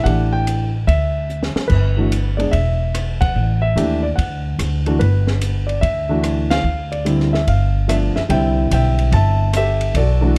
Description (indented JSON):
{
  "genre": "jazz piano trio",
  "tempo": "146 BPM",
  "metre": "4/4",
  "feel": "swing 66% on 8ths",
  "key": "G major",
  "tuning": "A4 = 438 Hz",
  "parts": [
    { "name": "warm concert grand piano", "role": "melody", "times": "0.0-10.4 s", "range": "D3 to A5", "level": "-22 LUFS", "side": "equal", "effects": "plate reverb" },
    { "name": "upright bass", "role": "bass", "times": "0.0-10.4 s", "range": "E1 to Eb2", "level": "-20 LUFS", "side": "equal", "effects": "none" },
    { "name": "compact cocktail drum kit", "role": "drums", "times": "0.1-10.1 s", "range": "crash cymbal, hi-hat, kick drum, ride cymbal, rim click, snare drum", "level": "-28 LUFS", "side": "equal", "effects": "none" }
  ],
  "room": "light reverb",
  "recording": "dark, warm production",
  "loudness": "-18 LUFS",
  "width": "mono",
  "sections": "0.0-8.3 A section; 8.3-10.4 B section",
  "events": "drum fill 1.3-1.7; band accent 3.1, 6.4",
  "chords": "0.0 A5; 0.9 Dsus2; 1.7 G; 2.5 N.C.; 3.3 A5; 4.2 D; 5.0 G6; 6.6 Dm11; 7.5 G9; 8.3 C6"
}